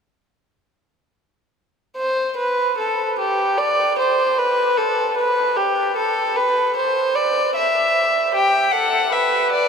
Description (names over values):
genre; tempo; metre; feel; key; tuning
classical, baroque-style fugue for string quartet; 76 BPM; 4/4; straight; unclear; A4 = 441 Hz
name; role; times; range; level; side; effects
dark violin; second line; 2.0-9.7 s; G4 to E5; -17 LUFS; equal; none
rich violin; melody; 8.3-9.7 s; D5 to G5; -18 LUFS; left 4 dB; none
room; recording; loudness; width
wet huge ambient reverb, RT60 7.7 s; in a vast, echoing space; -17 LUFS; side -6 dB against mid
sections
2.0-9.7 A section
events
none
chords
2.0 N.C.; 8.3 G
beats
| 1.96 2.76 3.56 4.36 | 5.16 5.95 6.75 7.54 | 8.33 9.12